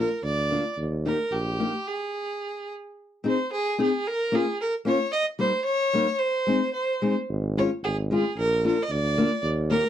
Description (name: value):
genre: alpine folk, alpine dance band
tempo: 111 BPM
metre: 2/4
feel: swing 54% on 8ths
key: Ab major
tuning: A4 = 437 Hz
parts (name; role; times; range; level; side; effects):
- rich fiddle; melody; 0.0-9.9 s; G4 to Eb5; -26 LUFS; right 1 dB; none
- fingerpicked steel-string acoustic guitar; accompaniment; 0.0-9.8 s; G3 to Ab4; -24 LUFS; left 3 dB; none
- warm tuba; bass; 0.0-1.7, 7.3-9.8 s; Ab1 to Eb2; -28 LUFS; right 1 dB; none
room: little or no reverb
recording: dry, close 1970s-style studio recording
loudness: -23 LUFS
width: side -10 dB against mid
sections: 0.0-3.0 A section; 3.0-9.9 A section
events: stop 1.9-3.0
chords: 0.0 Bb; 0.8 Eb; 1.9 N.C.; 3.0 Ab; 4.0 Bbm; 5.1 Eb; 6.2 Ab; 7.3 Db/Ab; 8.4 Bb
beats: 0.23 | 0.77 1.31 | 1.86 2.41 | 2.96 3.50 | 4.05 4.59 | 5.12 5.66 | 6.20 6.74 | 7.29 7.83 | 8.37 8.90 | 9.44